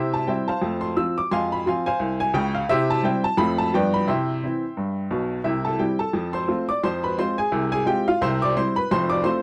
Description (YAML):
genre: jazz, stride piano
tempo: 174 BPM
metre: 4/4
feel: swing 58% on 8ths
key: C major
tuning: A4 = 439 Hz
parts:
  - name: bright upright piano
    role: solo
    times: 0.0-9.4 s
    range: F1 to E6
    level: -23 LUFS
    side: equal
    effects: none
room: light reverb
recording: dry, close 1970s-style studio recording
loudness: -23 LUFS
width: mono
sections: 0.0-5.5 A section; 5.5-9.4 A section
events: none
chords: 0.0 C; 0.6 F; 1.3 Fm; 2.7 C; 3.4 F; 3.7 G7; 4.1 C; 6.1 F; 6.8 Fm; 8.2 C; 8.9 F